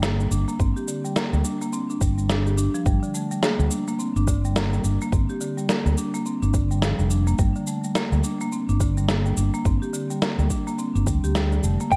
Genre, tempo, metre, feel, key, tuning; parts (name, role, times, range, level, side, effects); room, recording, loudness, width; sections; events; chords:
organic downtempo; 106 BPM; 4/4; swing 59% on 16ths; G minor; A4 = 440 Hz
marimba with medium hard mallets; arpeggios; 0.0-12.0 s; D3 to G4; -28 LUFS; equal; digital delay
fretless electric bass; bass; 0.0-12.0 s; F1 to D2; -25 LUFS; equal; sidechain pumping
electronic snare drum and cabasa; drums; 0.0-12.0 s; -30 LUFS; equal
electronic kick drum; drums; 0.6-12.0 s; -26 LUFS; equal
electric slide guitar; melody; 11.9-12.0 s; G5; -19 LUFS; equal
light reverb; -23 LUFS; mono
0.0-12.0 A section
0.0 Gm